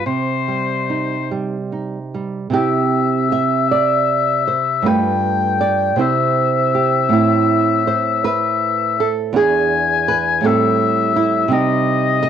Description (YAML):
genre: romantic duo for oboe and classical guitar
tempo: 46-57 BPM (dotted quarters)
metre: 6/8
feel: rubato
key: C major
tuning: A4 = 440 Hz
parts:
  - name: clear oboe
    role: melody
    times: 0.0-12.3 s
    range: C5 to G#5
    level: -18 LUFS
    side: left 9 dB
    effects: cassette tape
  - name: nylon-string guitar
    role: accompaniment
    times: 0.0-12.3 s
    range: E2 to E5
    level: -17 LUFS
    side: right 5 dB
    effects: cassette tape
room: light reverb, studio reverb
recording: home recording on cassette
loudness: -14 LUFS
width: side -8 dB against mid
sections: 0.0-2.6 A section; 2.6-12.3 B section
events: none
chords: 0.1 Cm; 2.6 C; 4.9 G9; 6.0 C; 7.1 Am; 9.4 E7; 10.5 Am7; 11.5 Cm